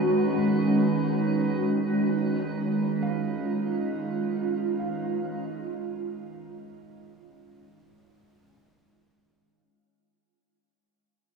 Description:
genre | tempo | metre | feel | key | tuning
ambient | free time | none | none | unclear | A4 = 442 Hz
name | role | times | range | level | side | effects
glassy FM pad | sustained chords | 0.0-9.3 s | Eb3 to Gb4 | -26 LUFS | right 1 dB | ensemble chorus, built-in reverb, cassette tape, shimmer reverb
felt-muted upright piano | arpeggios | 0.0-10.2 s | Db5 to Cb6 | -46 LUFS | right 4 dB | none
organ-like drone | drone | 0.0-9.4 s | Eb3 to Eb4 | -33 LUFS | right 4 dB | ensemble chorus, built-in reverb, cassette tape
drifting glass-harmonics texture | texture | 0.0-9.3 s | Cb5 | -40 LUFS | left 1 dB | chorus, built-in reverb, cassette tape, shimmer reverb
room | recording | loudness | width
wet studio ambience, RT60 0.5 s | home recording on cassette, small room reverb | -24 LUFS | side -4 dB against mid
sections
0.0-9.3 A section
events
fade-out on synth texture 0.0-9.3; fade-out 0.0-9.3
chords
0.0 Abm7/Eb; 2.1 Db7/Eb

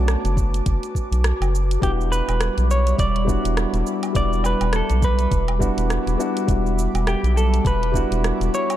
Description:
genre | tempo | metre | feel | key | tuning
sunset chillout | 103 BPM | 4/4 | swing 58% on 16ths | E dorian | A4 = 440 Hz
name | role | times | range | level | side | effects
warm concert grand piano | accompaniment | 0.0-8.8 s | G3 to F#4 | -27 LUFS | moving between left 6 dB and right 3 dB | auto-pan, low-pass filter, digital delay
airy breathy pad | sustained chords | 0.0-8.8 s | G3 to D6 | -28 LUFS | equal | chorus
round analog bass | bass | 0.0-8.5 s | E1 to B1 | -20 LUFS | equal | none
wind-like tuned noise texture | texture | 0.0-1.8 s | D6 | -43 LUFS | right 3 dB | none
smooth R&B drum kit | drums | 0.1-8.8 s | cabasa, hi-hat, rim click, woodblock | -30 LUFS | right 2 dB | studio reverb
electronic kick drum | drums | 0.4-8.1 s | none | -22 LUFS | equal | studio reverb
semi-hollow electric guitar | melody | 1.8-8.8 s | G4 to D5 | -25 LUFS | right 1 dB | spring reverb, digital delay
room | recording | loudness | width
light reverb | dark, warm production | -18 LUFS | side -12 dB against mid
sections
0.0-1.8 A section; 1.8-8.8 A section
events
filter sweep on grand piano 0.0-1.8, 1.8-8.8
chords
0.0 Bm7; 1.8 Em7

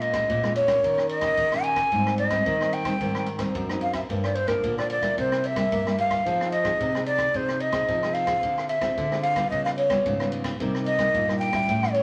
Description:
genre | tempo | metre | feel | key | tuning
samba and choro | 111 BPM | 4/4 | straight | C minor | A4 = 440 Hz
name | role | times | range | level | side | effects
breathy hollow jazz flute | melody | 0.0-12.0 s | Bb4 to Ab5 | -26 LUFS | equal | none
nylon-string guitar | accompaniment | 0.0-12.0 s | F2 to Ab4 | -32 LUFS | equal | none
nylon-string guitar | bass | 0.0-12.0 s | F#2 to Bb3 | -34 LUFS | equal | none
open jazz drum kit | drums | 0.0-12.0 s | kick drum, ride cymbal, rim click | -37 LUFS | equal | none
room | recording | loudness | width
moderate studio reverb, RT60 0.9 s | vinyl crackle | -24 LUFS | mono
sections
0.0-12.0 A section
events
none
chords
0.0 Bbm7; 0.8 Eb7; 1.9 Abmaj7; 4.1 Gm7; 5.2 C7; 6.3 Fm7; 8.4 Dm7b5; 9.5 Db7#11; 10.6 Cm7

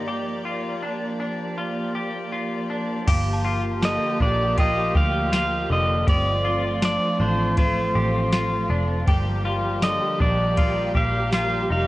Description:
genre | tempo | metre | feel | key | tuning
dream pop | 80 BPM | 4/4 | straight | G minor | A4 = 436 Hz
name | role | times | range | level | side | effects
warm chamber string section | sustained chords | 0.0-11.9 s | F3 to D5 | -27 LUFS | right 1 dB | none
semi-hollow electric guitar | arpeggios | 0.0-11.9 s | D3 to G4 | -29 LUFS | left 2 dB | lush chorus, tape echo
vintage muted picked electric bass | bass | 3.1-11.9 s | F1 to D2 | -25 LUFS | equal | none
soft vintage rhythm box | drums | 3.1-11.5 s | crash cymbal, kick drum, ride cymbal, snare drum, tambourine | -22 LUFS | equal | overdrive
synth chime | texture | 3.1-10.7 s | F5 to A5 | -37 LUFS | equal | ensemble chorus, tremolo, tape echo
pedal steel guitar | melody | 3.9-11.9 s | C5 to F5 | -24 LUFS | equal | tape echo
room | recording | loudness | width
light reverb | worn, warbling old tape, cassette tape, warbly pitch drift | -20 LUFS | side -17 dB against mid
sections
0.0-3.1 A section; 3.1-11.9 B section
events
none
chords
0.1 Gm7; 6.1 Dm7/G; 9.1 Ebmaj7/G (rootless)

